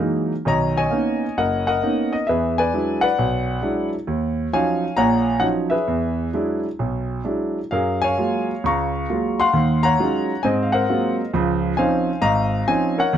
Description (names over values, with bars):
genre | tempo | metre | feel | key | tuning
solo jazz | 133 BPM | 4/4 | swing 66% on 8ths, rubato | Db major | A4 = 440 Hz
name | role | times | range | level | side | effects
warm concert grand piano | solo | 0.0-13.2 s | Gb1 to Db6 | -18 LUFS | equal | none
room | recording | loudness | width
little or no reverb | dry, close 1970s-style studio recording | -18 LUFS | side -9 dB against mid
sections
0.5-13.2 A section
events
none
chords
0.5 Cbmaj9; 2.3 E9; 4.1 Ebm9; 5.9 E9; 7.7 Gbmaj9; 9.6 Ebm11; 10.5 Ab13; 11.3 Dbmaj9